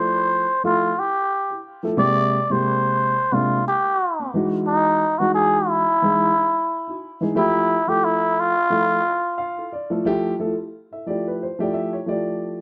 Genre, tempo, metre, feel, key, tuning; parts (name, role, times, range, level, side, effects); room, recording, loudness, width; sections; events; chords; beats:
jazz; 89 BPM; 4/4; swing 55% on 16ths; F major; A4 = 440 Hz
trumpet with cup mute; melody; 0.0-9.7 s; D#4 to D5; -22 LUFS; equal
dark baby grand piano; accompaniment; 0.0-12.6 s; C3 to F5; -25 LUFS; equal
moderate studio reverb, RT60 0.9 s; dark, warm production; -21 LUFS; mono
0.0-10.1 A section; 10.1-12.6 B section
grand piano fill 9.1-10.1
0.0 Fmaj9; 2.0 Abmaj9; 4.3 Emaj9; 7.4 Fmaj9
0.64 1.31 | 1.99 2.66 3.33 4.00 | 4.68 5.35 6.02 6.70 | 7.37 8.04 8.72 9.39 | 10.06 10.74 11.41 12.09